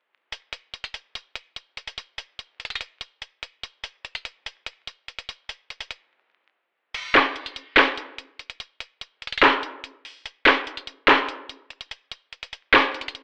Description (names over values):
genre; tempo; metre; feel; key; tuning
hip hop; 145 BPM; 4/4; half-time; none; none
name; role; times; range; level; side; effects
trap drum kit; drums; 0.3-13.2 s; crash cymbal, handclaps, hi-hat, snare drum; -21 LUFS; equal; none
room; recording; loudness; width
moderate plate reverb, RT60 0.9 s, digital ambience; vinyl crackle, telephone sound; -21 LUFS; mono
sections
0.3-6.9 A section; 6.9-13.2 B section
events
break 6.1-6.9; kick muted 6.9-13.2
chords
none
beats
| 0.32 0.74 1.15 1.56 | 1.98 2.39 2.81 3.22 | 3.63 4.05 4.46 4.88 | 5.29 5.70 6.12 6.53 | 6.94 7.36 7.77 8.19 | 8.60 9.01 9.43 9.84 | 10.25 10.67 11.08 11.50 | 11.91 12.32 12.74 13.15